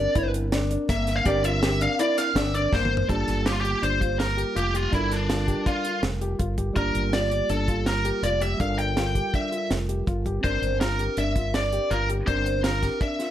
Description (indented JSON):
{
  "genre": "progressive instrumental, band music in an uneven meter",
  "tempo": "163 BPM",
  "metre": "5/4",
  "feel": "straight",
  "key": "G dorian",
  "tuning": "A4 = 440 Hz",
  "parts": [
    { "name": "bluesy overdriven lead guitar", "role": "melody", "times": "0.0-13.3 s", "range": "D4 to G5", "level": "-26 LUFS", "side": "equal", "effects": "distortion" },
    { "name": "overdriven tine electric piano", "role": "accompaniment", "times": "0.0-13.3 s", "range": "G3 to Bb4", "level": "-32 LUFS", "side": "right 4 dB", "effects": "none" },
    { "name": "dark grand piano", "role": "arpeggios", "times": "0.0-13.3 s", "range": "Bb3 to G4", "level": "-31 LUFS", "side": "left 3 dB", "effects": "none" },
    { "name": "mellow fretless electric bass", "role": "bass", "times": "0.0-12.9 s", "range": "F1 to G1", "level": "-27 LUFS", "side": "equal", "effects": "none" },
    { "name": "deep reggae drum kit", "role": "drums", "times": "0.2-13.3 s", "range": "hi-hat, kick drum, snare drum, toms", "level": "-28 LUFS", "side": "equal", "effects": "none" }
  ],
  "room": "moderate studio reverb, RT60 0.5 s",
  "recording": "none",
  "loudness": "-22 LUFS",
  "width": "side -11 dB against mid",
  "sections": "0.0-3.1 A section; 3.1-13.3 B section",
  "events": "lead electric guitar solo 0.0-3.1; drum fill 2.7-3.1",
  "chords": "0.0 Bbadd9/G; 3.1 Gm9; 10.4 Bbadd9/G"
}